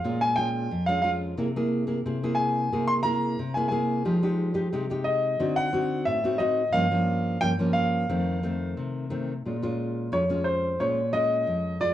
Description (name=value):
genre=samba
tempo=89 BPM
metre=4/4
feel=straight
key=F minor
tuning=A4 = 444 Hz
part: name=clear concert grand piano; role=melody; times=0.0-11.9 s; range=C5 to C6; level=-26 LUFS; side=equal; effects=plate reverb
part: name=nylon-string guitar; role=accompaniment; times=0.0-11.9 s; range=F2 to G#4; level=-26 LUFS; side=equal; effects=none
room=wet studio reverb, RT60 0.7 s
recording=worn, warbling old tape, cassette tape, warbly pitch drift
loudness=-24 LUFS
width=side -12 dB against mid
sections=0.0-9.4 A section; 9.4-11.9 B section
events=grand piano solo 9.4-11.9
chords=0.0 Bbm7; 1.4 Caug7; 4.1 Fm9; 5.4 D7b9; 6.8 Gm7b5; 8.1 F7; 9.4 Bbm7